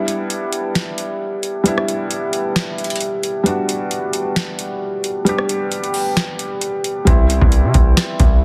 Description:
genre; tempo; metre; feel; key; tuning
hip hop, trap; 133 BPM; 4/4; half-time; E minor; A4 = 441 Hz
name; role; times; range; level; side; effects
felt-muted upright piano; accompaniment; 0.0-8.4 s; G3 to G4; -22 LUFS; equal; none
booming analog drum machine; drums; 0.1-8.4 s; hi-hat, kick drum, rim click, snare drum; -19 LUFS; equal; soft clipping on snare
distorted 808-style bass; bass; 7.1-8.4 s; C2 to C3; -18 LUFS; equal; distortion
room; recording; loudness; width
light reverb, digital ambience; dense, heavily limited modern master; -19 LUFS; mono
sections
0.0-8.4 A section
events
break 0.0-7.1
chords
0.0 Em7; 7.1 Cmaj7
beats
0.30 0.75 1.21 | 1.66 2.11 2.56 3.01 | 3.46 3.91 4.36 4.81 | 5.26 5.72 6.17 6.62 | 7.07 7.52 7.97 8.42

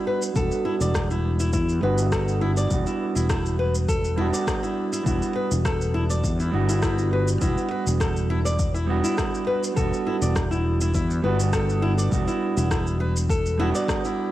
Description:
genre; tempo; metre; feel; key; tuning
organic downtempo; 102 BPM; 4/4; swing 54% on 16ths; E minor; A4 = 443 Hz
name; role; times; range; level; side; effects
mellow electric guitar; accompaniment; 0.0-14.3 s; G3 to F#4; -27 LUFS; right 5 dB; sidechain pumping, low-pass filter, cassette tape, analog delay
flamenco guitar; arpeggios; 0.0-14.3 s; E4 to D5; -28 LUFS; left 2 dB; cassette tape, analog delay
electronic shaker and rim click; drums; 0.2-14.2 s; none; -32 LUFS; equal; cassette tape
fretless electric bass; bass; 0.4-13.7 s; E1 to E2; -24 LUFS; left 1 dB; sidechain pumping
electronic kick drum; drums; 0.4-14.0 s; none; -28 LUFS; left 1 dB; cassette tape
room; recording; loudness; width
light reverb, digital ambience; home recording on cassette; -21 LUFS; side -14 dB against mid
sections
0.0-14.3 A section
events
filter sweep on clean electric guitar 0.0-14.3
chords
0.0 Em7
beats
| 0.36 0.94 1.53 2.12 | 2.71 3.30 3.89 4.47 | 5.06 5.65 6.24 6.83 | 7.42 8.00 8.59 9.18 | 9.77 10.36 10.95 11.53 | 12.12 12.71 13.30 13.89

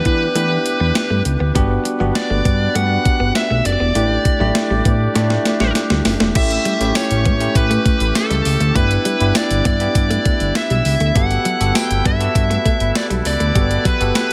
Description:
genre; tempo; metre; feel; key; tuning
1980s-style pop; 100 BPM; 4/4; straight; unclear; A4 = 441 Hz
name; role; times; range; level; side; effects
bluesy overdriven lead guitar; melody; 0.0-14.3 s; A4 to G5; -23 LUFS; equal; distortion, tape echo, shimmer reverb
bell-like tine electric piano; accompaniment; 0.0-14.3 s; A3 to A4; -24 LUFS; equal; shimmer reverb
mellow woodwind section; sustained chords; 0.0-14.3 s; E3 to F#5; -31 LUFS; equal; shimmer reverb
direct-recorded clean electric guitar; riff; 0.1-13.9 s; F#3 to B3; -29 LUFS; equal; none
fat analog bass; bass; 0.1-14.3 s; E1 to E3; -21 LUFS; equal; none
clean 12-bit digital drum machine; drums; 0.1-14.3 s; crash cymbal, hi-hat, kick drum, snare drum, tambourine; -21 LUFS; equal; none
room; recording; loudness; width
light reverb; none; -17 LUFS; mono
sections
0.0-6.4 A section; 6.4-14.3 B section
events
drum fill 5.2-6.4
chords
0.0 Em7; 1.6 Gmaj7; 6.4 A7; 8.8 Em7/G; 11.2 Gmaj9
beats
0.35 0.95 | 1.55 2.15 2.75 3.35 | 3.96 4.55 5.16 5.75 | 6.36 6.96 7.55 8.15 | 8.76 9.36 9.96 10.55 | 11.15 11.76 12.36 12.96 | 13.55 14.15

